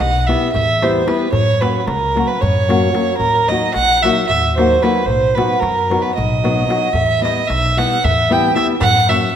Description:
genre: balkan folk, Balkan wedding band.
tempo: 224 BPM (eighths).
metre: 7/8.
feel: straight.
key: E hungarian minor.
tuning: A4 = 439 Hz.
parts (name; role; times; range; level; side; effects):
clear fiddle; melody; 0.0-9.4 s; A#4 to G5; -16 LUFS; right 2 dB; none.
upright bass; bass; 0.0-9.1 s; A#1 to F#2; -21 LUFS; equal; none.
darbuka; percussion; 0.0-9.3 s; none; -23 LUFS; left 2 dB; none.
nylon-string guitar; accompaniment; 0.3-9.3 s; F#3 to G4; -19 LUFS; left 3 dB; none.
room: wet scoring stage reverb, RT60 1.7 s.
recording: minimal, uncompressed stereo recording.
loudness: -13 LUFS.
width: side -9 dB against mid.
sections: 0.0-9.4 A section.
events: none.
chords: 0.0 Em; 1.3 F#; 3.2 D#m; 5.1 B; 6.9 Em; 8.8 F#.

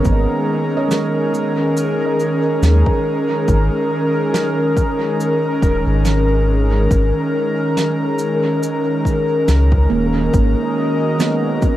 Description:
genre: ambient dub.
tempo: 70 BPM.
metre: 4/4.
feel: swing 56% on 16ths.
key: unclear.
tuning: A4 = 442 Hz.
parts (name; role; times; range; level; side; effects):
airy breathy pad; sustained chords; 0.0-11.8 s; D#3 to A#4; -18 LUFS; equal; chorus.
handpan; arpeggios; 0.0-4.1, 9.9-11.8 s; G#3 to D#5; -24 LUFS; right 5 dB; analog delay.
cabasa and snare drum; drums; 0.0-11.8 s; none; -26 LUFS; right 2 dB; cassette tape, dub echo.
bubbling stepped-filter texture; texture; 0.0-11.8 s; A#4 to D#5; -24 LUFS; equal; chorus, built-in reverb.
warm sub bass; bass; 0.1-10.5 s; D#1 to D#2; -15 LUFS; equal; none.
electronic kick drum; drums; 0.1-11.8 s; none; -18 LUFS; equal; cassette tape.
room: light reverb.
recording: home recording on cassette.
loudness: -14 LUFS.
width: side -14 dB against mid.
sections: 0.0-10.3 A section; 10.3-11.8 B section.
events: none.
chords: 0.0 G#5; 10.3 G#m7.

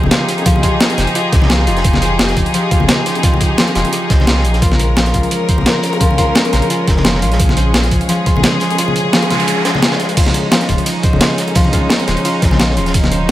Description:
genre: liquid drum and bass.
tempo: 173 BPM.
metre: 4/4.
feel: swing 54% on 16ths.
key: unclear.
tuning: A4 = 440 Hz.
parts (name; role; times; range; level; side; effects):
clear studio string section; sustained chords; 0.0-13.3 s; Ab3 to Bb4; -19 LUFS; left 1 dB; sidechain pumping.
concert harp; arpeggios; 0.0-13.3 s; F3 to C5; -18 LUFS; equal; vintage 12-bit sampler grit, dub echo.
warm sub bass; bass; 0.0-8.4, 10.7-13.3 s; Eb1 to C2; -17 LUFS; equal; tube saturation.
bongos and congas; percussion; 0.0-13.1 s; none; -22 LUFS; left 2 dB; none.
breakbeat sampler-style drum kit; drums; 0.1-13.3 s; crash cymbal, hi-hat, ride cymbal, snare drum; -17 LUFS; equal; studio reverb.
crunchy breakbeat drum kit; drums; 0.1-13.3 s; hi-hat, snare drum; -24 LUFS; equal; high-pass filter on hats, studio reverb, high-pass filter on snare, high-pass filter on room.
electronic kick drum; drums; 0.5-13.0 s; none; -15 LUFS; equal; studio reverb.
noise sweep; sound effects; 9.0-10.2 s; none; -23 LUFS; right 1 dB; none.
room: light reverb, studio reverb.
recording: none.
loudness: -11 LUFS.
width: side -14 dB against mid.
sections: 0.0-13.3 A section.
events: noise sweep 9.0-10.2.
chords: 0.0 Fm9; 4.6 Bbm7; 10.2 Eb7sus4.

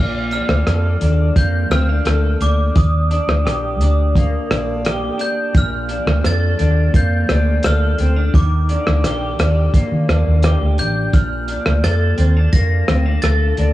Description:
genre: indie pop, bedroom pop.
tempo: 86 BPM.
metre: 4/4.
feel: straight.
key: Bb major.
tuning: A4 = 439 Hz.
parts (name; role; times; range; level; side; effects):
glockenspiel with brass mallets; melody; 0.0-13.7 s; D6 to Bb6; -25 LUFS; right 1 dB; analog chorus.
electric guitar through a small old amp; accompaniment; 0.0-13.7 s; Bb2 to A4; -22 LUFS; left 1 dB; analog chorus, vibrato effect.
vintage muted fingered electric bass; bass; 0.0-13.7 s; A1 to Eb3; -16 LUFS; equal; none.
cloth-damped thuddy drum kit; drums; 0.3-13.7 s; hi-hat, kick drum, rim click; -19 LUFS; equal; vintage 12-bit sampler grit.
room: studio ambience.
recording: none.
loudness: -14 LUFS.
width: side -15 dB against mid.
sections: 0.0-13.7 A section.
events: none.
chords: 0.0 Bbmaj7; 2.8 Ebmaj7; 5.5 Bbmaj7; 8.3 Ebmaj7; 11.1 Bbmaj7.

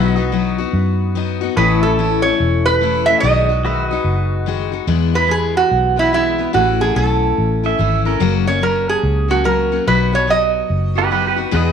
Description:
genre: country.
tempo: 144 BPM.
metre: 4/4.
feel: swing 63% on 8ths.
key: unclear.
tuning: A4 = 441 Hz.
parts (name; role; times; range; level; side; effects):
picked steel-string acoustic guitar; accompaniment; 0.0-11.7 s; E2 to G#4; -20 LUFS; left 13 dB; none.
pedal steel guitar; sustained chords; 0.0-4.9, 11.5-11.7 s; F#4 to E5; -25 LUFS; equal; lush chorus.
vintage muted fingered electric bass; bass; 0.0-11.7 s; E1 to F#2; -19 LUFS; equal; none.
lap resonator guitar; melody; 1.6-11.3 s; E4 to E5; -16 LUFS; right 4 dB; none.
pedal steel guitar; second line; 7.7-8.3, 11.0-11.6 s; G4 to E5; -20 LUFS; right 10 dB; none.
room: moderate spring reverb, RT60 1.2 s, studio reverb.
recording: 1960s-style stereo with parts hard left and right.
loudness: -14 LUFS.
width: side -7 dB against mid.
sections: 0.0-4.9 A section; 4.9-11.7 B section.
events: none.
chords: 0.0 B; 1.6 A; 3.2 B6; 4.9 E; 6.5 A; 8.2 F#; 9.9 B.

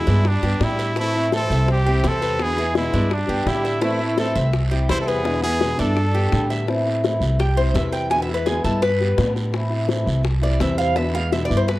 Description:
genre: latin, Cuban son and guajira.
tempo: 168 BPM.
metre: 4/4.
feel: straight.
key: A minor.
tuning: A4 = 440 Hz.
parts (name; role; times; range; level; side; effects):
brilliant trumpet; melody; 0.0-6.5 s; D4 to C5; -24 LUFS; right 1 dB; none.
clear studio violin section; second line; 0.0-6.5 s; G3 to E4; -29 LUFS; right 1 dB; none.
picked acoustic archtop guitar; accompaniment; 0.0-11.7 s; B2 to G4; -25 LUFS; left 1 dB; none.
Cuban tres; arpeggios; 0.0-11.8 s; D4 to G#5; -25 LUFS; equal; none.
upright bass; bass; 0.1-11.8 s; C2 to A2; -22 LUFS; equal; none.
bongos; percussion; 0.1-11.8 s; none; -28 LUFS; left 6 dB; none.
guiro; percussion; 0.1-11.8 s; none; -36 LUFS; right 6 dB; none.
room: little or no reverb.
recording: dry, close 1970s-style studio recording.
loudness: -18 LUFS.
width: side -17 dB against mid.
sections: 0.0-6.7 A section; 6.7-11.8 B section.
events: Cuban tres solo 6.7-11.8.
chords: 0.2 Gadd9; 1.0 Am; 1.7 C; 2.4 E7; 3.1 Gadd9; 3.8 Am; 4.5 C; 5.3 E7; 6.0 Gadd9; 6.7 Am; 7.4 C; 8.1 E7; 8.8 Gadd9; 9.5 Am; 10.3 C; 11.0 E7.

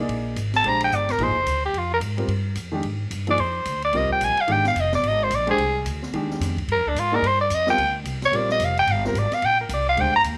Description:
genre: modal jazz.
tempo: 219 BPM.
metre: 4/4.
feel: swing 62% on 8ths.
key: unclear.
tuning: A4 = 441 Hz.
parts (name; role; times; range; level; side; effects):
warm baby grand piano; accompaniment; 0.0-10.1 s; Eb3 to D5; -31 LUFS; equal; none.
upright bass; bass; 0.0-10.4 s; F1 to Ab2; -30 LUFS; equal; none.
open jazz drum kit; drums; 0.1-10.3 s; hi-hat, kick drum, ride cymbal, snare drum; -37 LUFS; equal; none.
growling soprano saxophone; melody; 0.6-10.2 s; D4 to Bb5; -23 LUFS; equal; none.
room: light reverb, studio ambience.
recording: none.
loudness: -22 LUFS.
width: mono.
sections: 0.0-10.4 A section.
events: soprano saxophone solo 0.0-10.4.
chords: 0.0 Fm.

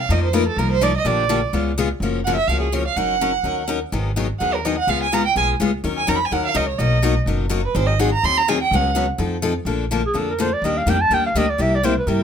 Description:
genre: acoustic string swing (jazz manouche).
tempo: 251 BPM.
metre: 4/4.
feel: swing 54% on 8ths.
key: F# major.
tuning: A4 = 436 Hz.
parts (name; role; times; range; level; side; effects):
warm violin; second line; 0.0-9.0 s; G#4 to B#5; -20 LUFS; right 5 dB; none.
picked steel-string acoustic guitar; accompaniment; 0.1-12.2 s; B2 to Bb4; -22 LUFS; left 5 dB; none.
upright bass; bass; 0.1-12.2 s; F#1 to G2; -23 LUFS; equal; none.
mellow clarinet; melody; 10.1-12.2 s; Ab4 to A5; -20 LUFS; right 2 dB; none.
room: light reverb.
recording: minimal, uncompressed stereo recording.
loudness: -17 LUFS.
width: side -8 dB against mid.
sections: 0.0-2.0 A section; 2.0-9.7 A section; 9.7-12.2 A section.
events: violin solo 0.0-9.7; clarinet solo 9.7-12.2.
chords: 0.1 F7sus4; 1.1 Bb6; 1.5 Db7; 2.0 F#maj7; 3.0 D#m7/F#; 3.9 G#m7; 4.9 C#7; 5.8 D#m7; 6.8 Bmaj7; 7.8 G#7; 8.7 C#7sus4; 9.2 F7; 9.7 Bbmaj7; 10.6 Ebmaj7; 11.6 C7.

